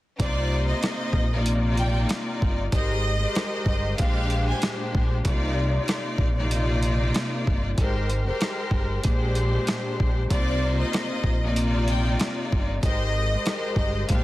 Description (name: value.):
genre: hip hop, boom-bap hip-hop.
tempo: 95 BPM.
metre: 4/4.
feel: swing 56% on 16ths.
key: C minor.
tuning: A4 = 437 Hz.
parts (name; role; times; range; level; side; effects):
warm studio violin section; melody; 0.2-4.6, 10.3-14.2 s; D5 to Ab5; -31 LUFS; equal; digital delay.
warm studio string section; accompaniment; 0.2-14.2 s; Bb2 to D5; -27 LUFS; left 1 dB; cassette tape.
deep dub fingered electric bass; bass; 0.2-14.2 s; G1 to C2; -25 LUFS; equal; none.
dusty soul sampler-style drum kit; drums; 0.2-14.2 s; hi-hat, kick drum, rim click, snare drum; -25 LUFS; equal; overdrive.
room: light reverb.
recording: dense, heavily limited modern master, vinyl crackle.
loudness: -22 LUFS.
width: side -17 dB against mid.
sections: 0.2-14.2 A section.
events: none.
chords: 0.2 Cm11; 2.7 Abmaj9; 4.0 Bb13; 5.3 Cm11; 7.8 Abmaj9; 9.0 Bb13; 10.3 Cm11; 12.8 Abmaj9.